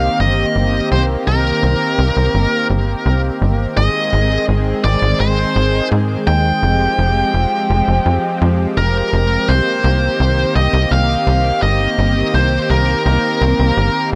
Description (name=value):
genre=synthwave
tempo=84 BPM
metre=4/4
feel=straight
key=C minor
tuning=A4 = 441 Hz
part: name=high-gain lead guitar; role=melody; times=0.0-14.1 s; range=Bb4 to G5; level=-20 LUFS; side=equal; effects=distortion, digital delay
part: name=lush unison pad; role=sustained chords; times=0.0-14.2 s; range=Eb3 to Ab4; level=-22 LUFS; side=equal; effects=chorus, vintage 12-bit sampler grit
part: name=tight sequencer bass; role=bass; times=0.0-14.2 s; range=F1 to Ab2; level=-18 LUFS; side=equal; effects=none
room=light reverb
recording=dark, warm production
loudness=-15 LUFS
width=mono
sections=0.0-14.2 A section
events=none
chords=0.0 Cm7; 3.8 Ab; 6.6 Fmadd9; 9.5 Cm7